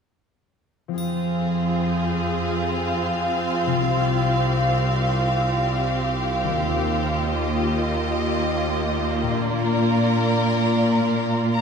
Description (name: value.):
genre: cinematic, emotional film score for orchestra.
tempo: 85 BPM.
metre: 4/4.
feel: rubato.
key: F dorian.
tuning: A4 = 436 Hz.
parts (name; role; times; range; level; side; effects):
concert harp; arpeggios; 0.9-11.6 s; Bb2 to Ab4; -26 LUFS; left 3 dB; none.
rich studio violin section; second line; 1.0-11.6 s; G4 to F5; -25 LUFS; left 1 dB; none.
clear studio viola section; accompaniment; 1.0-11.6 s; Bb3 to F4; -26 LUFS; right 1 dB; none.
warm studio cello section; bass; 1.0-11.6 s; C2 to Bb2; -26 LUFS; right 2 dB; none.
triangle; percussion; 1.0-2.4 s; none; -41 LUFS; left 2 dB; none.
rich studio violin section; melody; 11.6 s; Bb5; -26 LUFS; left 7 dB; none.
room: wet scoring stage reverb, RT60 1.6 s.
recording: minimal, uncompressed stereo recording.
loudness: -20 LUFS.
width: side -6 dB against mid.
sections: 1.0-11.6 A section.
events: none.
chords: 1.0 Fm; 3.8 Csus4; 6.6 Ebadd9; 9.4 Bb.